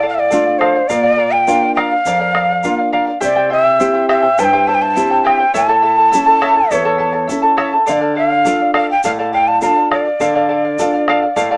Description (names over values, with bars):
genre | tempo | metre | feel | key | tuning
andean folk, Andean ensemble | 103 BPM | 4/4 | straight | D minor | A4 = 444 Hz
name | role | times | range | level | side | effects
breathy mellow quena | melody | 0.0-11.6 s | C5 to Bb5 | -16 LUFS | equal | none
charango | accompaniment | 0.0-11.6 s | E4 to A5 | -19 LUFS | equal | none
nylon-string guitar | accompaniment | 0.0-11.6 s | E2 to A4 | -23 LUFS | equal | none
bombo | percussion | 0.3-11.5 s | none | -25 LUFS | equal | none
egg shaker | percussion | 0.3-11.5 s | none | -34 LUFS | equal | none
room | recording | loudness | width
moderate studio reverb, RT60 0.6 s | small speaker sound | -14 LUFS | mono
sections
0.0-11.6 A section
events
none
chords
0.0 Dm; 0.9 Bb; 3.2 C; 5.5 A; 7.9 Dm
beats
0.31 | 0.89 1.47 2.06 2.64 | 3.22 3.80 4.38 4.97 | 5.55 6.13 6.71 7.29 | 7.87 8.46 9.04 9.62 | 10.20 10.78 11.36